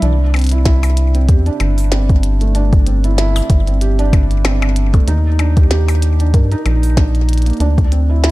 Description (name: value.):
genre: IDM.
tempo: 95 BPM.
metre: 4/4.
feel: swing 56% on 16ths.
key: unclear.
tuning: A4 = 440 Hz.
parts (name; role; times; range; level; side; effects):
felt-muted upright piano; arpeggios; 0.0-8.3 s; A3 to Bb4; -21 LUFS; right 3 dB; ping-pong delay.
rubbery square bass; bass; 0.0-8.3 s; G1 to G2; -13 LUFS; equal; none.
glitchy drum kit; drums; 0.0-8.3 s; hi-hat, percussion blips, snare drum; -23 LUFS; left 1 dB; overdrive, ping-pong delay.
electronic kick drum; drums; 0.7-7.9 s; none; -12 LUFS; equal; overdrive.
room: digital ambience.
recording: dark, warm production.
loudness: -11 LUFS.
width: side -19 dB against mid.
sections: 0.0-8.3 A section.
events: none.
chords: 0.0 C69; 5.1 Ebmaj7; 7.6 D7sus2.